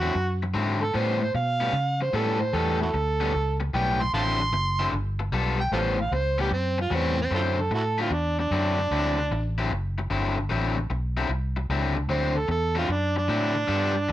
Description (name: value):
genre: electric blues shuffle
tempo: 151 BPM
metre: 4/4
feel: swing 67% on 8ths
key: D mixolydian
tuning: A4 = 440 Hz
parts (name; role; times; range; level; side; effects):
- overdriven harmonica; melody; 0.0-9.5, 12.1-14.1 s; C4 to C6; -26 LUFS; right 2 dB; none
- overdriven semi-hollow guitar; riff; 0.0-14.1 s; A2 to A4; -28 LUFS; left 4 dB; none
- vintage muted fingered electric bass; bass; 0.0-14.1 s; F#1 to C#3; -27 LUFS; equal; none
room: light reverb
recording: none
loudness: -23 LUFS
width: side -14 dB against mid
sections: 0.0-7.3 A section; 7.3-14.1 B section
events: harmonica solo 0.0-7.3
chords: 0.0 D9; 0.9 A9; 4.1 D9; 4.9 G9; 5.7 A9; 7.3 D9